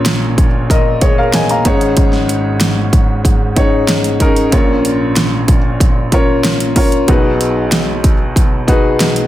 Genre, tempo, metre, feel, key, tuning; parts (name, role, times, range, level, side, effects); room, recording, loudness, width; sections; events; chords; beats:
piano-driven pop; 94 BPM; 4/4; straight; A4 = 440 Hz
clear upright piano; accompaniment; 0.0-9.3 s; Ab1 to Bb5; -13 LUFS; left 1 dB
pop drum kit; drums; 0.1-9.3 s; hi-hat, kick drum, snare drum; -13 LUFS; equal
light reverb; dense, heavily limited modern master; -10 LUFS; side -14 dB against mid
0.0-9.3 A section
0.0 Bbm; 1.7 Absus4; 4.5 Bbm; 7.1 Abm7/Cb
0.06 0.70 1.33 | 1.97 2.61 3.25 3.89 | 4.53 5.17 5.80 6.44 | 7.08 7.72 8.36 9.00